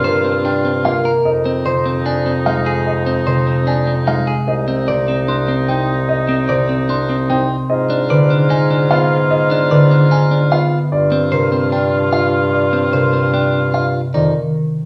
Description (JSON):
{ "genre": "classical, minimalist pattern music", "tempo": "149 BPM", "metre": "4/4", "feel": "straight", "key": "F dorian", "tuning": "A4 = 440 Hz", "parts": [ { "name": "dark grand piano", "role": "melody", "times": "0.0-14.3 s", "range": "Bb4 to C6", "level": "-24 LUFS", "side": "equal", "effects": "none" }, { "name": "clear oboe", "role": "second line", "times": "0.0-13.9 s", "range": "Eb4 to F4", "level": "-25 LUFS", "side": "equal", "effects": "none" }, { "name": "concert harp", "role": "accompaniment", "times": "0.0-14.3 s", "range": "C3 to C4", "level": "-20 LUFS", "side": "equal", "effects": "none" }, { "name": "clean electric guitar", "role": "arpeggios", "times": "0.0-14.3 s", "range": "C4 to D5", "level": "-23 LUFS", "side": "equal", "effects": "none" }, { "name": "mellow bassoon", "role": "bass", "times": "0.0-14.3 s", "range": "C2 to Ab2", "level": "-22 LUFS", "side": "equal", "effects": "none" } ], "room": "wet large studio reverb, RT60 1.1 s", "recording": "heard from further back in the room", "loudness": "-16 LUFS", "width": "mono", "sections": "0.0-14.1 A section", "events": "none", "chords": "0.0 Gm7; 1.3 Fm7; 4.5 Cm; 7.7 Abm6; 10.9 G7(no3); 14.1 Dm/F", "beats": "0.05 0.45 0.85 | 1.25 1.66 2.06 2.46 | 2.87 3.27 3.67 4.07 | 4.47 4.88 5.28 5.68 | 6.09 6.49 6.89 7.29 | 7.70 8.10 8.50 8.90 | 9.31 9.71 10.11 10.52 | 10.92 11.32 11.72 12.13 | 12.53 12.93 13.33 13.74 | 14.14" }